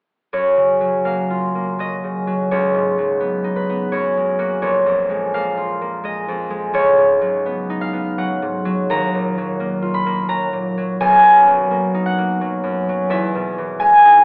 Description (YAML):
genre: classical, solo harp piece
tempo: 84 BPM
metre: 3/4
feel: rubato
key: F# major, Eb minor from 8.9 s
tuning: A4 = 440 Hz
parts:
  - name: concert harp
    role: solo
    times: 0.3-14.2 s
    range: A#1 to Cb6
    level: -17 LUFS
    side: equal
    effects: none
room: moderate recital hall reverb, RT60 1.5 s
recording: worn, warbling old tape, cassette tape, warbly pitch drift, AM radio sound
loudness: -18 LUFS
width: mono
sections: 0.3-14.2 A section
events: none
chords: 0.3 F#maj7; 2.5 C#11; 3.9 F#add9; 4.6 A#m7; 6.8 C#11; 8.9 Ebmadd9; 11.0 Bmaj7; 13.1 Emaj7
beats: | 0.33 1.06 1.78 | 2.50 3.20 3.91 | 4.62 5.34 6.06 | 6.76 7.47 8.18 | 8.89 9.60 10.29 | 10.98 11.69 12.40 | 13.10 13.81